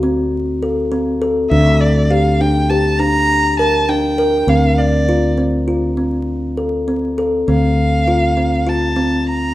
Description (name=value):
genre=contemporary instrumental, chamber music in an uneven meter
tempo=101 BPM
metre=5/4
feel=straight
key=D minor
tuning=A4 = 440 Hz
part: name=kalimba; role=arpeggios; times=0.0-9.3 s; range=C4 to Bb4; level=-16 LUFS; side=left 1 dB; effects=none
part: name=fretless electric bass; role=bass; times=0.0-9.5 s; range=D2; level=-18 LUFS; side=equal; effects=none
part: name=rich violin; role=melody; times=1.5-9.5 s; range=D5 to Bb5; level=-18 LUFS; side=equal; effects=none
room=wet recital hall reverb, RT60 1.3 s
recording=dark, warm production, vinyl crackle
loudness=-13 LUFS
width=side -15 dB against mid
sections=0.0-9.5 A section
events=none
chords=0.0 D7(no3); 1.5 Gm/D; 4.5 Dm7